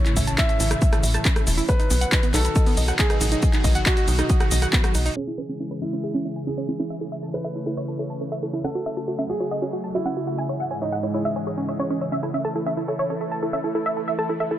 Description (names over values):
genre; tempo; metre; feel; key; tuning
uplifting trance; 138 BPM; 4/4; straight; C# minor; A4 = 442 Hz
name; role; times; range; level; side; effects
felt-muted upright piano; second line; 0.0-12.0 s; D#4 to E5; -30 LUFS; right 1 dB; digital delay
supersaw pad; sustained chords; 0.0-14.6 s; G#2 to C#5; -29 LUFS; equal; phaser, sidechain pumping, low-pass filter
analog pluck; arpeggios; 0.1-14.5 s; B3 to A5; -30 LUFS; right 3 dB; chorus, sidechain pumping, digital delay
punchy analog drum machine; drums; 0.1-5.1 s; handclaps, hi-hat, rim click, shaker; -26 LUFS; left 1 dB; sidechain pumping on hats, sidechain pumping on perc
tight sequencer bass; bass; 0.2-5.1 s; E1 to B1; -22 LUFS; equal; sidechain pumping
electronic kick drum; drums; 0.2-4.8 s; none; -20 LUFS; equal; overdrive
wide unison pluck; melody; 5.2-14.6 s; C#4 to G#5; -28 LUFS; equal; sidechain pumping, dub echo
room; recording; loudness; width
little or no reverb; low-pass filter; -21 LUFS; side -12 dB against mid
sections
0.0-5.2 A section; 5.2-14.6 B section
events
filter sweep on supersaw synth 0.0-5.2; filter sweep on synth pluck 5.2-14.6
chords
0.0 A; 1.7 B; 5.2 C#m; 6.9 A; 8.6 F#m; 10.4 C#m/G#; 12.1 A